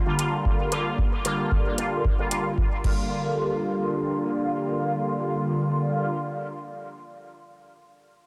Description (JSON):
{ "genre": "dub techno", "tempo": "113 BPM", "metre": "4/4", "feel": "straight", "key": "G minor", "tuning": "A4 = 441 Hz", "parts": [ { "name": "deep dark ambient pad", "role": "sustained chords", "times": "3.2-6.1 s", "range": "D4 to C5", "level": "-36 LUFS", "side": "equal", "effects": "chorus, built-in reverb, sidechain pumping" }, { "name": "resonant sweep polysynth", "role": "stabs", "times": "0.1-6.1 s", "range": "D3 to F4", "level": "-28 LUFS", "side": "equal", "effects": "chorus, phaser, sidechain pumping, dub echo" }, { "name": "deep house drum kit", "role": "drums", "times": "0.2-3.0 s", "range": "crash cymbal, hi-hat", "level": "-34 LUFS", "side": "equal", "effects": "overdrive" }, { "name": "electronic kick drum", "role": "drums", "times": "0.5-3.0 s", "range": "none", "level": "-27 LUFS", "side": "equal", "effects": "none" } ], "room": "moderate echo chamber reverb, RT60 1.9 s", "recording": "none", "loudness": "-26 LUFS", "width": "mono", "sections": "0.0-3.1 A section; 3.1-7.4 B section", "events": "none", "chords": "0.0 Gm7" }